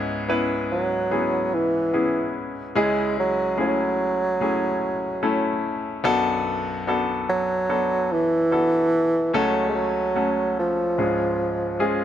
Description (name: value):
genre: pop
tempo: 73 BPM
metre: 4/4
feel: straight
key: unclear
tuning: A4 = 440 Hz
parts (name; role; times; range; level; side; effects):
- clear baby grand piano; accompaniment; 0.0-12.0 s; B1 to F#5; -24 LUFS; left 2 dB; none
- dark bassoon; melody; 0.7-12.0 s; E3 to G#3; -22 LUFS; right 2 dB; none
room: light reverb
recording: none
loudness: -20 LUFS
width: side -10 dB against mid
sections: 0.0-12.0 A section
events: none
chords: 0.0 C#m7; 2.8 Amaj7/C#; 6.0 Bm7; 9.3 F#m/C#; 11.0 C#